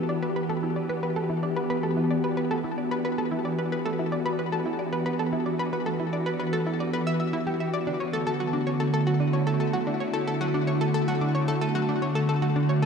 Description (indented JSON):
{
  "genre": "ambient, sequencer-driven space music",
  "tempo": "112 BPM",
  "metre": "4/4",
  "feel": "straight",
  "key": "E dorian",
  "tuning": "A4 = 439 Hz",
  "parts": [
    { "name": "evolving wavetable pad", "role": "sustained chords", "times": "0.0-12.9 s", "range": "D3 to G4", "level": "-26 LUFS", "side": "equal", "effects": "ensemble chorus, built-in reverb, shimmer reverb" },
    { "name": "vibraphone with medium hard mallets", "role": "arpeggios", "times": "0.0-12.9 s", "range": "B3 to E5", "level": "-39 LUFS", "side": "right 1 dB", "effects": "none" },
    { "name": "analog pluck", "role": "riff", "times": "0.1-12.9 s", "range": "D4 to E5", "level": "-29 LUFS", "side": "left 1 dB", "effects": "chorus, ping-pong delay, shimmer reverb" }
  ],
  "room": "wet lush hall reverb, RT60 2.9 s",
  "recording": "dark, warm production",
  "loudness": "-24 LUFS",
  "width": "side -6 dB against mid",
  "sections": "0.0-12.9 A section",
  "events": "none",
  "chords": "0.0 Em7; 7.9 Dadd9"
}